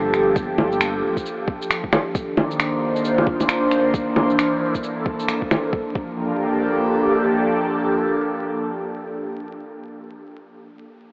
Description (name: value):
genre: future garage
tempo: 134 BPM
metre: 4/4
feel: swing 61% on 16ths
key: G minor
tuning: A4 = 440 Hz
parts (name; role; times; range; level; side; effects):
- airy breathy pad; sustained chords; 0.0-10.1 s; Eb3 to C5; -20 LUFS; equal; chorus, phaser, vintage 12-bit sampler grit, sidechain pumping
- dark detuned saw bass; bass; 0.0-1.2 s; D1 to G1; -30 LUFS; equal; sidechain pumping
- electronic finger snaps, shaker and bongos; drums; 0.1-5.6 s; none; -22 LUFS; equal; none
- electronic kick drum; drums; 0.4-6.1 s; none; -26 LUFS; equal; none
room: wet huge ambient reverb, RT60 7.2 s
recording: vinyl crackle, AM radio sound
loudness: -18 LUFS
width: side -32 dB against mid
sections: 0.0-5.7 A section; 5.7-9.3 B section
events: none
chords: 0.0 Gm9; 2.2 Cm11; 3.9 C13; 5.7 Gm9